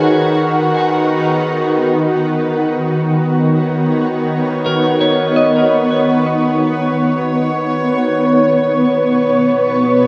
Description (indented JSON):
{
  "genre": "ambient",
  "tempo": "free time",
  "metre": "none",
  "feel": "none",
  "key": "unclear",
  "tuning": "A4 = 441 Hz",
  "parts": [
    { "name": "shimmering ambient pad", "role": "sustained chords", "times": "0.0-10.1 s", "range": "B2 to C#5", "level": "-15 LUFS", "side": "equal", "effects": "chorus, built-in reverb" },
    { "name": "clean electric guitar", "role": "arpeggios", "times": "0.0-8.1 s", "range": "G#4 to D#5", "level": "-22 LUFS", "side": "equal", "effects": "tape echo" }
  ],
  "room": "wet lush hall reverb, RT60 2.9 s",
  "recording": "none",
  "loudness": "-15 LUFS",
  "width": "mono",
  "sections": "0.0-8.3 A section; 8.3-10.1 B section",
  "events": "none",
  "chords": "0.0 C#9sus4; 8.3 C#7/B"
}